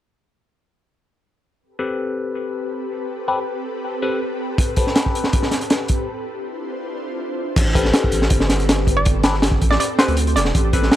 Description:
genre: drum and bass, jungle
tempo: 161 BPM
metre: 4/4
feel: straight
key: A minor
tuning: A4 = 439 Hz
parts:
  - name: ethereal airy pad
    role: sustained chords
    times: 2.2-11.0 s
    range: C4 to C5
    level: -27 LUFS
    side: equal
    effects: ensemble chorus, built-in reverb
  - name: bell-like tine electric piano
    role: stabs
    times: 1.8-11.0 s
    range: C4 to B4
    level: -25 LUFS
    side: left 4 dB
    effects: phaser, low-pass filter, dub echo
  - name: crunchy breakbeat drum kit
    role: drums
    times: 4.6-11.0 s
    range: crash cymbal, hi-hat, kick drum, snare drum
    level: -17 LUFS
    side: equal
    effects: none
  - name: saturated sub bass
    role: bass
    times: 7.6-10.9 s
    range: E1 to D2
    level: -20 LUFS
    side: equal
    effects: none
  - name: hollow square pluck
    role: melody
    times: 9.0-10.9 s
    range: C5 to D5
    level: -22 LUFS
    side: right 2 dB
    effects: chorus, dub echo
room: small room ambience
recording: dry, gritty hardware recording, transformer saturation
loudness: -17 LUFS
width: side -12 dB against mid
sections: 1.6-7.6 A section; 7.6-11.0 B section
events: break 6.1-7.6; drop 7.6-11.0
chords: 1.6 Am9; 6.1 Dm9; 7.6 Am9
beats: | 1.60 1.98 2.35 2.72 | 3.09 3.47 3.84 4.21 | 4.58 4.96 5.33 5.70 | 6.07 6.45 6.82 7.19 | 7.57 7.94 8.31 8.68 | 9.06 9.43 9.80 10.17 | 10.55 10.92

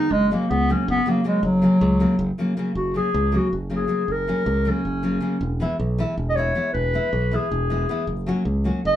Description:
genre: balkan folk, Balkan wedding band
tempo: 315 BPM (eighths)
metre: 7/8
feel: straight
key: F# mixolydian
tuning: A4 = 437 Hz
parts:
  - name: mellow clarinet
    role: melody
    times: 0.0-9.0 s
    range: F#3 to D#5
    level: -21 LUFS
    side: equal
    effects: none
  - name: nylon-string guitar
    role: accompaniment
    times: 0.0-8.8 s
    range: C#3 to F#4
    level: -25 LUFS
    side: left 1 dB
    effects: none
  - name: modern bright fingered electric bass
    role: bass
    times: 0.1-9.0 s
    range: E1 to C#2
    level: -24 LUFS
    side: equal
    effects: none
room: wet small room reverb, RT60 0.5 s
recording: band playing live in one room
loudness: -19 LUFS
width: side -11 dB against mid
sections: 0.0-2.7 A section; 2.7-9.0 B section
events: clarinet solo 2.7-9.0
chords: 0.1 F#; 5.4 E; 8.1 F#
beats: | 0.10 0.28 0.47 0.66 0.85 1.04 1.23 | 1.42 1.61 1.80 1.99 2.17 2.36 2.55 | 2.74 2.93 3.12 3.31 3.50 3.69 3.88 | 4.07 4.26 4.46 4.65 4.84 5.03 5.22 | 5.41 5.60 5.79 5.98 6.17 6.36 6.55 | 6.74 6.93 7.12 7.32 7.51 7.70 7.89 | 8.08 8.27 8.46 8.65 8.84

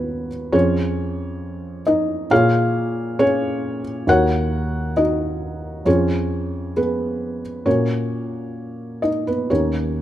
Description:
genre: classical, lyrical solo piano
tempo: 68 BPM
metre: 4/4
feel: rubato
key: Eb minor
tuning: A4 = 440 Hz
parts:
  - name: felt-muted upright piano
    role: solo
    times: 0.0-10.0 s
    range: Eb2 to Gb5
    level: -18 LUFS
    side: equal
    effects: none
room: light reverb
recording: close, detailed microphones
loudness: -18 LUFS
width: side -12 dB against mid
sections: 0.0-10.0 A section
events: none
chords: 0.0 Abm7/Eb; 0.5 Dbadd9/F; 2.3 Bbm7; 4.1 Ebm7; 5.9 Fdim; 7.7 Ebm/Bb; 9.5 Eb7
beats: | 0.54 1.42 2.31 3.19 | 4.07 4.96 5.85 6.76 | 7.66 8.57 9.50

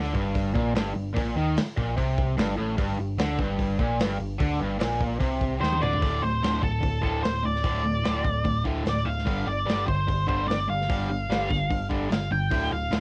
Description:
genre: garage rock duo or trio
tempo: 148 BPM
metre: 4/4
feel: straight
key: unclear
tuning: A4 = 440 Hz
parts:
  - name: cranked stack guitar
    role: riff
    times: 0.0-13.0 s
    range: D2 to G3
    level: -30 LUFS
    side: equal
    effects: overdrive, cassette tape
  - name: picked electric bass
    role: bass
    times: 0.0-13.0 s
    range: D1 to Eb2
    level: -33 LUFS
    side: equal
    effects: overdrive
  - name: crunchy breakbeat drum kit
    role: drums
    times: 0.1-13.0 s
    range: hi-hat, kick drum, snare drum, toms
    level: -31 LUFS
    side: equal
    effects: cassette tape
  - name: octave-fuzz lead guitar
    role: melody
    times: 5.6-13.0 s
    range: A4 to G5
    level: -31 LUFS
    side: equal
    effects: distortion, cassette tape
room: moderate booth ambience, RT60 0.3 s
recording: home recording on cassette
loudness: -26 LUFS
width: mono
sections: 0.0-6.0 A section; 6.0-13.0 B section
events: drum fill 5.6-6.0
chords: 0.0 G5; 6.0 D5; 9.3 G5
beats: 0.35 0.75 | 1.16 1.56 1.97 2.38 | 2.78 3.18 3.59 3.99 | 4.40 4.80 5.21 5.61 | 6.02 6.42 6.83 7.24 | 7.64 8.05 8.46 8.86 | 9.27 9.67 10.08 10.49 | 10.89 11.30 11.70 12.11 | 12.51 12.92

